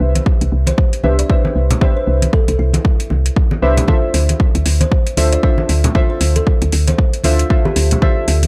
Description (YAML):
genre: deep house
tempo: 116 BPM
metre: 4/4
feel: swing 58% on 16ths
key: D dorian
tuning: A4 = 442 Hz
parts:
  - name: deep mellow chord stab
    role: stabs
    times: 0.0-8.5 s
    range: D4 to E5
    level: -23 LUFS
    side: equal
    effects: chorus, cassette tape, sidechain pumping, tape echo
  - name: woody FM bass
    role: bass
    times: 0.0-8.5 s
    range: C2 to D2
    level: -17 LUFS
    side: equal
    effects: tube saturation, sidechain pumping
  - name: electronic hi-hat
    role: drums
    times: 0.2-8.5 s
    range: none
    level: -25 LUFS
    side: equal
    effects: overdrive
  - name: congas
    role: percussion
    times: 0.2-8.5 s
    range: none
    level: -23 LUFS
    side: equal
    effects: sidechain pumping on perc
  - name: electronic kick drum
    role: drums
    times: 0.3-8.1 s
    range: none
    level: -16 LUFS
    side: equal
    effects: overdrive
  - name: kalimba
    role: melody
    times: 0.7-7.9 s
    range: E4 to D5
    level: -28 LUFS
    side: equal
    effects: analog delay
room: little or no reverb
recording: dry, gritty hardware recording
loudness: -15 LUFS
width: mono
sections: 0.0-8.5 A section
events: none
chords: 0.0 Cmaj9; 3.9 Dm7